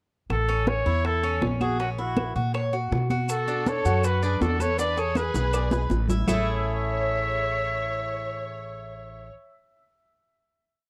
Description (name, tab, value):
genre	latin, Cuban son and guajira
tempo	161 BPM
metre	4/4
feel	straight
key	A major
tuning	A4 = 440 Hz
part	warm trumpet	melody	0.3-9.3 s	F#4 to E5	-31 LUFS	equal	none
part	upright bass	bass	0.3-9.3 s	A1 to B2	-30 LUFS	equal	none
part	bongos	percussion	0.3-6.4 s	none	-37 LUFS	equal	none
part	claves	percussion	0.3-6.4 s	none	-42 LUFS	equal	none
part	congas	percussion	0.3-6.4 s	none	-32 LUFS	equal	none
part	Cuban tres	arpeggios	0.5-9.3 s	A3 to D5	-34 LUFS	equal	none
part	warm symphonic violin section	second line	3.3-9.3 s	F#4 to C#5	-35 LUFS	equal	none
part	maracas	percussion	3.3-6.4 s	none	-42 LUFS	equal	none
room	light reverb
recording	dry, close 1970s-style studio recording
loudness	-25 LUFS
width	mono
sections	0.3-6.3 verse; 6.3-9.3 final chord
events	drum fill 5.3-6.3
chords	0.3 A; 1.8 F#7/A#; 3.3 Bm7; 4.8 E7; 6.3 Amaj7